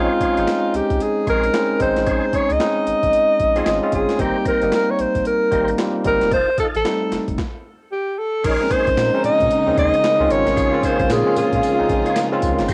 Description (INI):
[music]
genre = R&B, new jack swing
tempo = 113 BPM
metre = 4/4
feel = swing 62% on 16ths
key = Bb dorian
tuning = A4 = 440 Hz
[part]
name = breathy alto saxophone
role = melody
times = 0.0-12.4 s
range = F4 to Eb5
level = -21 LUFS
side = equal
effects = cassette tape, plate reverb
[part]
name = bell-like tine electric piano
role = accompaniment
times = 0.0-12.7 s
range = G3 to F4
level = -24 LUFS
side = equal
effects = cassette tape
[part]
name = tonewheel organ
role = stabs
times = 0.0-12.7 s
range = C4 to C5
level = -31 LUFS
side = equal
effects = chorus vibrato, fast rotary speaker, cassette tape, plate reverb
[part]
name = round analog bass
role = bass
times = 0.0-12.7 s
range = E1 to Bb2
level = -29 LUFS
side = equal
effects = none
[part]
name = boom bap sampler-style drum kit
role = drums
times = 0.2-12.7 s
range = crash cymbal, hi-hat, kick drum, snare drum, tambourine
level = -29 LUFS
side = equal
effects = overdrive, cassette tape
[part]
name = warm studio string section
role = sustained chords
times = 8.4-12.7 s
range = Db3 to G4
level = -25 LUFS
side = equal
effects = cassette tape, plate reverb
[sound]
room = moderate studio reverb, RT60 0.5 s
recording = home recording on cassette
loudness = -18 LUFS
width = mono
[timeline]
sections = 0.0-8.4 A section; 8.4-12.7 B section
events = stop 7.4-8.4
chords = 0.0 Bbm11; 4.2 Abmaj9; 6.3 F7; 8.4 Bbm11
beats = 0.48 1.01 1.54 | 2.07 2.60 3.13 3.66 | 4.19 4.72 5.25 5.79 | 6.32 6.85 7.38 7.91 | 8.44 8.97 9.50 10.03 | 10.56 11.10 11.63 12.16 | 12.69